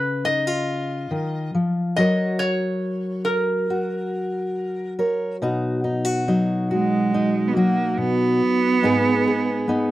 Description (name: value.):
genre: acoustic folk duo or small band.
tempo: 70 BPM.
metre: 4/4.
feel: straight.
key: B major.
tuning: A4 = 440 Hz.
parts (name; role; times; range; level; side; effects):
metal-body resonator slide guitar; melody; 0.0-4.9 s; A#4 to D#5; -25 LUFS; equal; none.
fingerpicked steel-string acoustic guitar; accompaniment; 0.0-9.9 s; G#2 to C#5; -22 LUFS; left 1 dB; none.
rich cello; second line; 6.7-9.9 s; G#3 to B3; -20 LUFS; right 4 dB; none.
room: light reverb.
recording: dry, close 1970s-style studio recording.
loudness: -19 LUFS.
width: side -15 dB against mid.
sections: 0.0-5.4 A section; 5.4-9.9 B section.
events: cello solo 5.4-9.9.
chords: 0.0 C#; 2.0 F#; 5.4 B; 8.8 G#m.